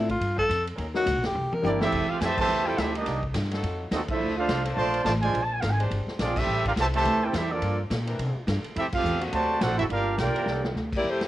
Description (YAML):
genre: jazz, big band swing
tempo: 210 BPM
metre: 4/4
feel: swing 59% on 8ths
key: F major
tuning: A4 = 440 Hz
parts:
  - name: breathy tenor saxophone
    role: melody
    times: 0.0-1.8 s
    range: F4 to Bb4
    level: -26 LUFS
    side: left 1 dB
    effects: cassette tape, plate reverb
  - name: warm upright piano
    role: accompaniment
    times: 0.0-1.8 s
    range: Gb3 to Bb4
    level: -32 LUFS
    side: left 7 dB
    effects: cassette tape, plate reverb
  - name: upright bass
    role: bass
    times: 0.0-11.3 s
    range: F1 to C3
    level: -29 LUFS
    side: equal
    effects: none
  - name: swinging big-band drum kit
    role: drums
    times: 0.1-11.3 s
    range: crash cymbal, hi-hat, kick drum, ride cymbal, snare drum, toms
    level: -32 LUFS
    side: equal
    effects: cassette tape
  - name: bright trombone section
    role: sustained chords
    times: 0.4-10.7 s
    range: D3 to C5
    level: -36 LUFS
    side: left 1 dB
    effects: cassette tape, plate reverb
  - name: warm trumpet section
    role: melody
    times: 1.6-10.7 s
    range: Bb3 to A5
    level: -26 LUFS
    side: right 1 dB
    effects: cassette tape, plate reverb
  - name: bright trombone section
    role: second line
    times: 1.6-10.7 s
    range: C3 to G4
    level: -32 LUFS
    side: right 7 dB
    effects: cassette tape, plate reverb
  - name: warm saxophone section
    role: melody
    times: 10.9-11.3 s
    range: A3 to D5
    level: -25 LUFS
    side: left 1 dB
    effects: cassette tape
room: moderate studio reverb, RT60 0.6 s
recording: home recording on cassette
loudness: -24 LUFS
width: side -14 dB against mid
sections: 0.0-1.9 A section; 1.9-11.0 B section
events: tenor saxophone solo 0.0-1.9; drum fill 1.4-1.9, 10.5; band accent 2.3, 4.1, 6.3, 8.9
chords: 0.0 Dm; 0.8 Ebm7; 1.4 C7; 1.9 Fmaj9; 3.1 Cm9; 3.6 F7b9; 4.2 Bbmaj9; 5.3 Bb13; 6.5 Am7; 7.6 Gm9; 8.8 Fmaj9; 9.3 D7b13; 9.9 Gm7; 10.5 C9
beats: 0.21 0.49 | 0.78 1.06 1.35 1.64 | 1.92 2.21 2.49 2.77 | 3.06 3.35 3.63 3.92 | 4.20 4.49 4.77 5.05 | 5.34 5.62 5.91 6.20 | 6.48 6.76 7.05 7.33 | 7.62 7.91 8.19 8.48 | 8.76 9.05 9.33 9.62 | 9.90 10.19 10.47 10.76 | 11.04